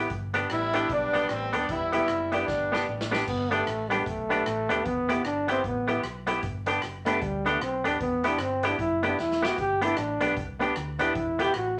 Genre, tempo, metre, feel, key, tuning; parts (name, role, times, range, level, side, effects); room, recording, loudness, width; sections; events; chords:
ska; 152 BPM; 4/4; swing 60% on 8ths; G major; A4 = 440 Hz
warm horn section; melody; 0.0-3.1 s; G3 to E4; -30 LUFS; equal
semi-hollow electric guitar; accompaniment; 0.0-11.5 s; B3 to G4; -31 LUFS; equal; harmonic tremolo
bright upright piano; stabs; 0.0-11.5 s; B3 to B4; -36 LUFS; equal
hollow-body short-scale fingered electric bass; bass; 0.0-11.8 s; Eb1 to D2; -40 LUFS; equal
street-band drum kit; drums; 0.1-11.7 s; crash cymbal, hi-hat, kick drum, rim click, snare drum; -40 LUFS; equal
clear trombone; melody; 3.3-11.8 s; G3 to G4; -30 LUFS; equal
wet studio reverb, RT60 0.5 s; -27 LUFS; mono
0.0-3.3 A section; 3.3-11.8 B section
drum fill 2.5-3.3, 9.2-9.6; trombone solo 3.3-11.8
0.1 G; 1.7 Em; 2.5 G; 4.9 Em; 6.4 G; 8.0 Em; 9.6 G; 11.2 Em